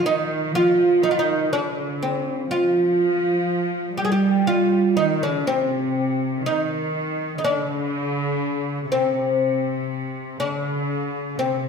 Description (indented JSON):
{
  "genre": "Arabic maqam ensemble",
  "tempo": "122 BPM (eighths)",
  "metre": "10/8",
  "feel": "straight",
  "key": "C maqam bayati",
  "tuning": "A4 = 441 Hz",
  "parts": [
    { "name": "oud", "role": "melody", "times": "0.0-11.7 s", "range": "C4 to Ab4", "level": "-21 LUFS", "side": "equal", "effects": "none" },
    { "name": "rich studio cello section", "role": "second line", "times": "0.0-11.7 s", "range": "C3 to G3", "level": "-24 LUFS", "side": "right 1 dB", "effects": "none" }
  ],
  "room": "wet scoring stage reverb, RT60 1.5 s",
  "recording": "minimal, uncompressed stereo recording",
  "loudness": "-20 LUFS",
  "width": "side -6 dB against mid",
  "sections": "0.0-2.5 A section; 2.5-11.7 B section",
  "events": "none",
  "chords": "none",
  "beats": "0.04 0.54 1.03 1.52 2.02 | 2.51 3.00 3.50 3.99 4.48 4.98 5.47 5.96 6.46 6.95 | 7.44 7.94 8.43 8.92 9.41 9.91 10.40 10.89 11.39"
}